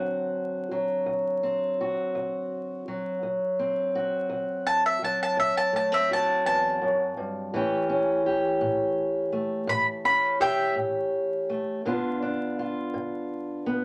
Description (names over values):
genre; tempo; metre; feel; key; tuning
acoustic country blues, solo or duo; 56 BPM (dotted quarters); 12/8; straight; D mixolydian; A4 = 440 Hz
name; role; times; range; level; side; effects
fingerpicked steel-string acoustic guitar; accompaniment; 0.0-13.8 s; D2 to G4; -28 LUFS; equal; none
mandolin; melody; 4.7-10.8 s; E5 to B5; -26 LUFS; equal; none
room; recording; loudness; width
moderate club reverb, RT60 0.6 s; vinyl crackle; -27 LUFS; mono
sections
0.0-13.8 A section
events
mandolin solo 0.0-13.8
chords
0.0 D7; 7.5 A7; 11.8 G7